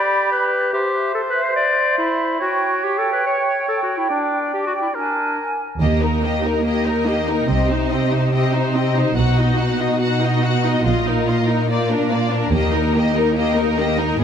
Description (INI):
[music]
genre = cinematic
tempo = 143 BPM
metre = 4/4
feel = straight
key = Eb major from 5.8 s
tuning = A4 = 440 Hz
[part]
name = bright clarinet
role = second line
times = 0.0-5.4 s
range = D4 to D5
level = -20 LUFS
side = left 2 dB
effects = none
[part]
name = bright small flute group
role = second line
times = 0.0-5.6 s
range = E5 to B5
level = -24 LUFS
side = right 3 dB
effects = none
[part]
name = warm oboe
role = second line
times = 0.0-5.6 s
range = G4 to D5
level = -23 LUFS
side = right 1 dB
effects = none
[part]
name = clear symphonic violin section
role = melody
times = 5.8-14.2 s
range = Bb4 to F#5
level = -24 LUFS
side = left 4 dB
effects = none
[part]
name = rich symphonic violin section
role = second line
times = 5.8-14.2 s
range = D4 to Bb4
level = -25 LUFS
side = left 2 dB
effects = none
[part]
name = bright symphonic viola section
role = accompaniment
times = 5.8-14.2 s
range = Bb3 to F#4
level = -23 LUFS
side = left 1 dB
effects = none
[part]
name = rich symphonic cello section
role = bass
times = 5.8-14.2 s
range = Eb2 to C3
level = -20 LUFS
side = right 1 dB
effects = none
[part]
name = rich symphonic double bass section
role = bass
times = 5.8-12.9 s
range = Bb1 to Eb2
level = -22 LUFS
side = right 2 dB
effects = none
[sound]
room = moderate scoring stage reverb, RT60 1.9 s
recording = faint mains hum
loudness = -16 LUFS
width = side -8 dB against mid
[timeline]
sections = 0.0-5.8 A section; 5.8-14.2 B section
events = none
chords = 0.0 G; 0.7 C/G; 2.4 Em69 (rootless); 4.1 Dsus4; 5.0 Bb7/D; 5.8 Eb; 7.5 Cm; 9.2 B; 10.9 Bbsus4; 11.7 Bb; 12.5 Eb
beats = 0.32 | 0.74 1.16 1.57 2.00 | 2.42 2.84 3.26 3.68 | 4.10 4.52 4.95 5.38 | 5.81 6.24 6.66 7.08 | 7.50 7.92 8.34 8.76 | 9.18 9.60 10.02 10.44 | 10.86 11.28 11.70 12.12 | 12.54 12.96 13.38 13.79 | 14.21